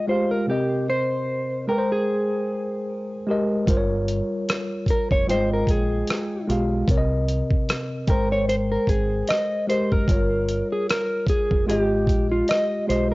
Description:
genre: lo-fi hip hop.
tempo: 75 BPM.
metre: 4/4.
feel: swing 55% on 16ths.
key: F minor.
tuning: A4 = 440 Hz.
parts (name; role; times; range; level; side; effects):
mellow electric guitar; melody; 0.0-13.1 s; F4 to Eb5; -24 LUFS; equal; cassette tape.
tine electric piano; accompaniment; 0.0-13.1 s; C3 to G5; -24 LUFS; equal; medium stereo tremolo, cassette tape.
deep dub fingered electric bass; bass; 3.7-13.1 s; F1 to C2; -26 LUFS; equal; none.
dusty soul sampler-style drum kit; drums; 3.7-13.1 s; hi-hat, kick drum, rim click; -23 LUFS; equal; cassette tape.
room: digital ambience.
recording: home recording on cassette, nothing above 7.6 kHz.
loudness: -20 LUFS.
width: side -21 dB against mid.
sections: 0.0-13.1 A section.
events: none.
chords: 0.5 Cm7; 1.7 Abmaj9; 3.7 Gm7b5; 5.3 Fm7/Ab; 6.9 Cm7; 8.1 Abmaj9; 10.1 Gm7b5; 11.7 Fm7/Ab.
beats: | 0.48 1.28 2.08 2.88 | 3.68 4.48 5.28 6.08 | 6.88 7.68 8.48 9.28 | 10.08 10.88 11.68 12.48.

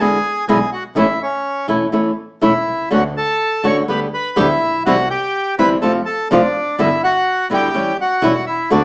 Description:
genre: tango.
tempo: 124 BPM.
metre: 4/4.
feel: rubato.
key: unclear.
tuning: A4 = 440 Hz.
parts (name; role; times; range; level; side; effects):
bandoneon; melody; 0.0-8.8 s; C#4 to C#6; -17 LUFS; equal; none.
flamenco guitar; accompaniment; 0.0-8.8 s; B2 to G4; -15 LUFS; equal; none.
clear double bass; bass; 0.0-8.8 s; E1 to F2; -26 LUFS; equal; none.
room: moderate studio reverb, RT60 0.7 s.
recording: band playing live in one room, small speaker sound.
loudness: -14 LUFS.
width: side -27 dB against mid.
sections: 0.0-8.8 A section.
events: none.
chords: 0.0 E7; 1.0 A; 2.9 Dmaj7; 3.9 G/D; 4.9 C; 5.8 F; 6.8 Em7/G; 7.8 A7.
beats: 0.48 | 0.96 1.45 1.93 2.42 | 2.92 3.41 3.89 4.38 | 4.86 5.35 5.83 6.31 | 6.79 7.27 7.75 8.23 | 8.72.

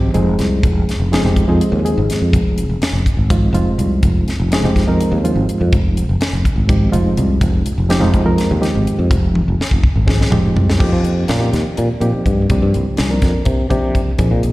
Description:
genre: electric jazz fusion.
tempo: 248 BPM (eighths).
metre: 7/8.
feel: straight.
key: F minor.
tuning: A4 = 440 Hz.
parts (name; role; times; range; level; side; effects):
reed electric piano; accompaniment; 0.0-14.5 s; F3 to Bb4; -18 LUFS; right 1 dB; fast tremolo, slapback echo.
sustaining fretless electric bass; bass; 0.0-14.5 s; F1 to F3; -16 LUFS; equal; wide subtle chorus.
tight funk drum kit; drums; 0.1-14.5 s; crash cymbal, hi-hat, kick drum, snare drum, toms; -18 LUFS; equal; none.
room: light reverb, studio ambience.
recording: live gig heard through the venue's PA, recital hall reverb.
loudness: -13 LUFS.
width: side -18 dB against mid.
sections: 0.0-10.8 A section; 10.8-14.5 B section.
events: drum fill 9.4-10.8.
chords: 0.0 Fm9; 10.8 F9sus4; 12.5 C9sus4.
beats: 0.15 0.39 | 0.63 0.87 1.11 1.36 1.60 1.84 2.08 | 2.33 2.57 2.81 3.05 3.30 3.54 3.78 | 4.02 4.27 4.51 4.75 4.99 5.24 5.48 | 5.72 5.96 6.20 6.45 6.69 6.93 7.17 | 7.41 7.66 7.90 8.14 8.38 8.62 8.87 | 9.11 9.35 9.59 9.84 10.08 10.32 10.56 | 10.80 11.04 11.29 11.53 11.77 12.01 12.26 | 12.50 12.74 12.98 13.22 13.47 13.71 13.95 | 14.19 14.44.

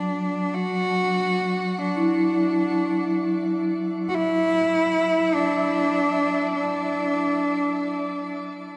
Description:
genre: ambient.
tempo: free time.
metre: none.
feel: none.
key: unclear.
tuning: A4 = 436 Hz.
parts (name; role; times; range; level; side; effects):
bright cello; melody; 0.0-8.3 s; D4 to F#4; -25 LUFS; equal; diffuse ambient delay.
vibraphone with soft mallets; arpeggios; 0.0-8.8 s; F#3 to E4; -28 LUFS; equal; diffuse ambient delay.
room: wet shimmer reverb, RT60 7.7 s.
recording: dark, warm production.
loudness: -23 LUFS.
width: mono.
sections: 0.0-8.8 A section.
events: none.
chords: 0.0 Esus2.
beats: free time.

